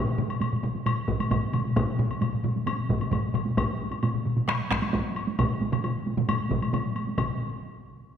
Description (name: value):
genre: japanese traditional, taiko drum ensemble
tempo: 133 BPM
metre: 4/4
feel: straight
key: none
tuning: none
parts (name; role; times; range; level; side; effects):
- taiko ensemble; percussion; 0.2-7.4 s; none; -31 LUFS; right 3 dB; none
- taiko ensemble; percussion; 0.2-7.6 s; none; -32 LUFS; left 4 dB; none
- taiko ensemble; percussion; 0.2-7.6 s; none; -30 LUFS; right 2 dB; none
- woodblock; percussion; 0.3-7.4 s; none; -34 LUFS; left 4 dB; none
- solo taiko drums; percussion; 1.1-7.4 s; none; -32 LUFS; left 2 dB; none
room: wet concert hall reverb, RT60 1.8 s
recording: none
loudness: -25 LUFS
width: side -8 dB against mid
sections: 0.0-7.2 A section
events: none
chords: none